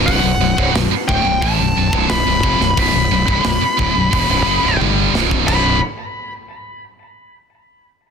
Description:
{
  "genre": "heavy metal",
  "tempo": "89 BPM",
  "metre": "4/4",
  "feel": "straight",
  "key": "B phrygian",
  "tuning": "A4 = 441 Hz",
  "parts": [
    { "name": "heavy high-gain guitar", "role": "riff", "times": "0.0-5.8 s", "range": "B1 to G3", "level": "-19 LUFS", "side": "right 17 dB", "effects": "distortion" },
    { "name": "scooped high-gain guitar", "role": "riff", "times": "0.0-5.8 s", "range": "B1 to G3", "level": "-20 LUFS", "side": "left 10 dB", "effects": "distortion" },
    { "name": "fuzz fingered electric bass", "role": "bass", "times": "0.0-5.8 s", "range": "B0 to A1", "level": "-20 LUFS", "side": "equal", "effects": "overdrive" },
    { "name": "high-gain lead guitar", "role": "melody", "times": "0.1-5.8 s", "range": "F#5 to B5", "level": "-19 LUFS", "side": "left 1 dB", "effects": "distortion, tape echo" },
    { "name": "tight metal drum kit", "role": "drums", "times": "0.1-5.6 s", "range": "crash cymbal, hi-hat, kick drum, snare drum, toms", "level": "-22 LUFS", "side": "right 1 dB", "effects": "soft clipping on kick" }
  ],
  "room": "small room reverb",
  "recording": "dense, heavily limited modern master",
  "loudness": "-13 LUFS",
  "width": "side -6 dB against mid",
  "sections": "0.1-5.5 A section; 5.5-8.1 B section",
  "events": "drum fill 4.8-5.5",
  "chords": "0.1 Bm; 5.5 B5",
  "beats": "| 0.07 0.74 1.42 2.09 | 2.77 3.44 4.12 4.80 | 5.47"
}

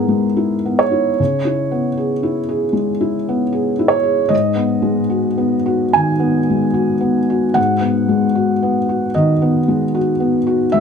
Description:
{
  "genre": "neoclassical minimalist piano",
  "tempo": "76 BPM",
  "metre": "4/4",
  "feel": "rubato",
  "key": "G# minor",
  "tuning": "A4 = 439 Hz",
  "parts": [
    { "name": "felt-muted upright piano", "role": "solo", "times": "0.0-10.8 s", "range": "G#2 to G#5", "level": "-14 LUFS", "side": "equal", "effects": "none" }
  ],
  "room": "light reverb",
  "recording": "dark, warm production",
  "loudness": "-14 LUFS",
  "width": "side -6 dB against mid",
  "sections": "0.0-10.8 A section",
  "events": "none",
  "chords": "0.0 E/G#; 1.2 C#m7; 4.3 G#m7",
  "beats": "0.37 | 1.20 1.98 2.76 3.54 | 4.32 5.12 5.96 6.77 | 7.58 8.37 9.16 9.96 | 10.76"
}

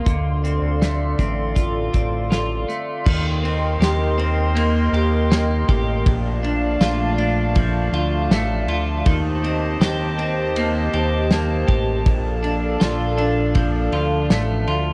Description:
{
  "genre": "dream pop",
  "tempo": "80 BPM",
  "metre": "4/4",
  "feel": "straight",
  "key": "unclear",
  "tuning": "A4 = 440 Hz",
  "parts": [
    { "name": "hollow soft pad", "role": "sustained chords", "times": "0.0-14.9 s", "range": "A3 to C6", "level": "-27 LUFS", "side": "equal", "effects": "chorus" },
    { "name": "clean electric guitar", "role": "arpeggios", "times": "0.0-14.9 s", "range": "D3 to G4", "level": "-26 LUFS", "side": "equal", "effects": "lush chorus, delay" },
    { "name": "fat analog bass", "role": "bass", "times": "0.0-14.9 s", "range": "A1 to Eb2", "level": "-24 LUFS", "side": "equal", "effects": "none" },
    { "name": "loose indie drum kit", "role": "drums", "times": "0.1-14.9 s", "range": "crash cymbal, hi-hat, kick drum, ride cymbal, snare drum, tambourine", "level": "-24 LUFS", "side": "equal", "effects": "none" }
  ],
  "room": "light reverb, small room ambience",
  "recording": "dark, warm production",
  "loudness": "-20 LUFS",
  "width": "mono",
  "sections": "0.0-3.1 A section; 3.1-14.9 B section",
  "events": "none",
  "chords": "0.1 Dm7; 3.1 Eb6; 6.1 Bbmaj7; 9.1 Eb6; 12.1 Bbmaj7",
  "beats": "| 0.06 0.81 1.56 2.31 | 3.06 3.81 4.56 5.31 | 6.06 6.81 7.56 8.31 | 9.06 9.81 10.56 11.31 | 12.06 12.81 13.56 14.31"
}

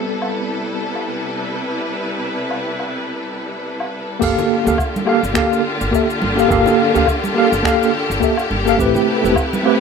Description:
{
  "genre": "sunset chillout",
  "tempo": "105 BPM",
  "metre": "4/4",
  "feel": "swing 56% on 16ths",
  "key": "unclear",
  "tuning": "A4 = 439 Hz",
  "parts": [
    { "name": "tine electric piano", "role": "accompaniment", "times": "0.0-9.8 s", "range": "G3 to F5", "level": "-17 LUFS", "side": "moving between left 3 dB and right 3 dB", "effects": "medium stereo tremolo, auto-pan, digital delay" },
    { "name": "clear symphonic string section", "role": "sustained chords", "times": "0.0-9.8 s", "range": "C3 to B4", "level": "-21 LUFS", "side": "left 1 dB", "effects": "low-pass filter" },
    { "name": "soft brush drum kit", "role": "drums", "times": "0.2-9.8 s", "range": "cabasa, crash cymbal, finger snaps, woodblock", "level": "-26 LUFS", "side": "left 1 dB", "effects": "low-pass filter on cymbals, low-pass filter on perc, low-pass filter on snare, low-pass filter on room" },
    { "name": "upright bass", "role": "bass", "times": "4.2-9.3 s", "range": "E1 to D2", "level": "-24 LUFS", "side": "equal", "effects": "none" },
    { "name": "electronic kick drum", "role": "drums", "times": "4.2-9.5 s", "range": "none", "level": "-24 LUFS", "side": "equal", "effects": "none" },
    { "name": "congas", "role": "percussion", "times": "4.4-9.6 s", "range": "none", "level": "-26 LUFS", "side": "right 5 dB", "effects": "none" }
  ],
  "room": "wet studio reverb, RT60 0.7 s",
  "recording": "rough home demo mix",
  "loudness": "-15 LUFS",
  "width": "side -5 dB against mid",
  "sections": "0.0-4.2 A section; 4.2-9.8 B section",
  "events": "filter sweep on tine electric piano 0.0-4.2",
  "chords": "0.0 Am9; 4.2 Gm9; 8.8 Am9",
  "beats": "0.22 0.79 1.36 | 1.93 2.50 3.08 3.65 | 4.22 4.79 5.36 5.93 | 6.50 7.08 7.65 8.22 | 8.79 9.36"
}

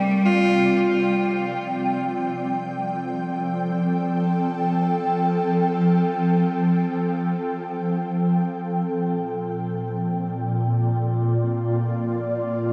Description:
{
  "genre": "ambient",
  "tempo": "free time",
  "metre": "none",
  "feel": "none",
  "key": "unclear",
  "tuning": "A4 = 440 Hz",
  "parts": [
    { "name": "clear cello", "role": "melody", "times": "0.0-0.8 s", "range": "G3 to F4", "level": "-24 LUFS", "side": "equal", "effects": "shimmer reverb, tape echo" },
    { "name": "ethereal airy pad", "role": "sustained chords", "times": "0.0-12.7 s", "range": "Bb2 to G5", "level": "-24 LUFS", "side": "equal", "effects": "ensemble chorus, built-in reverb, phaser, shimmer reverb" }
  ],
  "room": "wet huge ambient reverb, RT60 8.6 s",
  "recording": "dark, warm production",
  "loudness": "-23 LUFS",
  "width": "mono",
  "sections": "0.0-8.9 A section; 8.9-12.7 B section",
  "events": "fade-in on ambient pad 0.0-8.9",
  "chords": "0.0 Csus2; 0.8 Fadd9; 8.9 C7sus4/Bb",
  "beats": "free time"
}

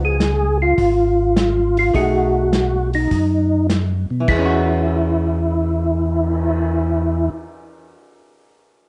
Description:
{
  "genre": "soul jazz organ trio",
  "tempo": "103 BPM",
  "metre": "4/4",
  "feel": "swing 69% on 8ths",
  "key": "E major",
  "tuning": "A4 = 440 Hz",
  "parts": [
    { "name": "percussive tonewheel organ", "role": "melody", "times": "0.0-7.3 s", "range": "D#4 to G#4", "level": "-21 LUFS", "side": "equal", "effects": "slow rotary speaker, chorus vibrato" },
    { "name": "archtop guitar, miked and amplified", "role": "accompaniment", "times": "0.0-7.5 s", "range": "E3 to G#4", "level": "-26 LUFS", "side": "equal", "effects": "none" },
    { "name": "mellow tonewheel organ", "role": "bass", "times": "0.0-7.3 s", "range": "G#1 to B2", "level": "-22 LUFS", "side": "equal", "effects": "slow rotary speaker" },
    { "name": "vintage drum kit", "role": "drums", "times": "0.2-6.5 s", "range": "crash cymbal, cymbal swell, hi-hat, kick drum, snare drum", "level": "-27 LUFS", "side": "equal", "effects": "none" }
  ],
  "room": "moderate large studio reverb, RT60 1.4 s",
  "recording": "dark, warm production, nothing above 10.8 kHz",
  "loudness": "-18 LUFS",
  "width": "mono",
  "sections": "0.0-4.3 A section; 4.3-6.6 B section",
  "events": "none",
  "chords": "0.0 C#; 1.9 B6; 4.3 E69",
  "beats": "0.19 0.78 1.36 | 1.95 2.53 3.12 3.70 | 4.28 4.87 5.45 6.04"
}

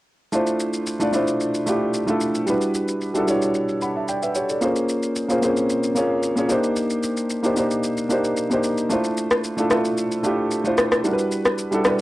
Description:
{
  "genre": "amapiano",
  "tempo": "112 BPM",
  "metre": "4/4",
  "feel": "straight",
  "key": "unclear",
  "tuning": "A4 = 443 Hz",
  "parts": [
    { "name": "dark grand piano", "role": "accompaniment", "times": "0.3-12.0 s", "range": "G3 to B5", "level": "-20 LUFS", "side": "equal", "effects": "none" },
    { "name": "electronic shaker and rim click", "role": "drums", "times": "0.3-12.0 s", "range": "none", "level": "-25 LUFS", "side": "left 1 dB", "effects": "cassette tape" }
  ],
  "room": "moderate studio reverb, RT60 0.5 s",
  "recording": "home recording on cassette",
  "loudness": "-19 LUFS",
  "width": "side -17 dB against mid",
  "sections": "0.3-12.0 A section",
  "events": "none",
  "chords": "0.3 Dm9; 2.5 Em9; 4.6 Bbm9; 6.5 Cm9; 8.9 Dm9; 11.0 Em9",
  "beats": "| 0.33 0.87 1.41 1.94 | 2.48 3.01 3.55 4.08 | 4.62 5.16 5.69 6.23 | 6.76 7.30 7.83 8.37 | 8.90 9.44 9.98 10.51 | 11.05 11.58"
}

